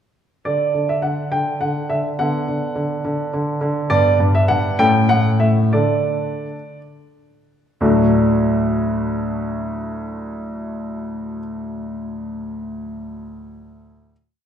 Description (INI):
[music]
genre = classical-period piano sonatina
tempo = 56-71 BPM (dotted quarters)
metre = 6/8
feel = rubato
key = D major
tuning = A4 = 440 Hz
[part]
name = warm baby grand piano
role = solo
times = 0.5-14.1 s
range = D2 to G5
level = -18 LUFS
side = equal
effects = none
[sound]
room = wet recital hall reverb, RT60 1.7 s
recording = heard from further back in the room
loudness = -17 LUFS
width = side -9 dB against mid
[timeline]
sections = 0.5-7.8 A section; 7.8-11.9 final chord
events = slowing down 3.1-7.8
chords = 0.5 D5; 2.2 Bm/D; 3.9 Gmaj7; 4.8 A; 5.8 D5; 7.8 D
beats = | 0.47 1.35 | 2.21 3.06 | 3.92 4.80 | 5.76 6.77 | 7.81 8.84 | 9.87 10.90